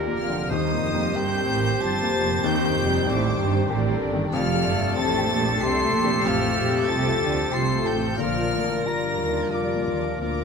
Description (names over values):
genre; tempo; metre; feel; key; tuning
cinematic, emotional film score for orchestra; 94 BPM; 3/4; rubato; unclear; A4 = 440 Hz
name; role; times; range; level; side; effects
bright oboe; second line; 0.0-10.4 s; A4 to C5; -32 LUFS; right 3 dB; none
dark studio violin section; second line; 0.0-10.4 s; G4 to D5; -33 LUFS; left 2 dB; none
warm clarinet; second line; 0.0-10.4 s; F4 to G4; -34 LUFS; left 1 dB; none
dark symphonic viola section; accompaniment; 0.0-10.4 s; D3 to G4; -32 LUFS; right 3 dB; none
warm baby grand piano; accompaniment; 0.0-10.4 s; D2 to G4; -29 LUFS; left 4 dB; none
mellow French horn section; sustained chords; 0.0-10.4 s; A3 to Bb4; -30 LUFS; left 6 dB; none
concert harp; arpeggios; 0.0-10.4 s; D3 to D6; -33 LUFS; left 10 dB; none
dark studio double bass section; bass; 0.0-10.4 s; F1 to Eb2; -30 LUFS; right 6 dB; none
warm symphonic cello section; bass; 0.0-10.4 s; D2 to D3; -30 LUFS; right 5 dB; none
warm symphonic violin section; melody; 0.2-10.4 s; D6 to C7; -30 LUFS; left 3 dB; none
mellow hollow concert flute; second line; 0.2-10.4 s; D5 to C6; -32 LUFS; left 1 dB; none
room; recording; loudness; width
light reverb; close, detailed microphones; -20 LUFS; side -5 dB against mid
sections
0.0-10.4 A section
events
none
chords
0.0 Gm; 0.5 Eb6; 2.4 Cmadd9; 4.3 Fadd9; 8.2 Bb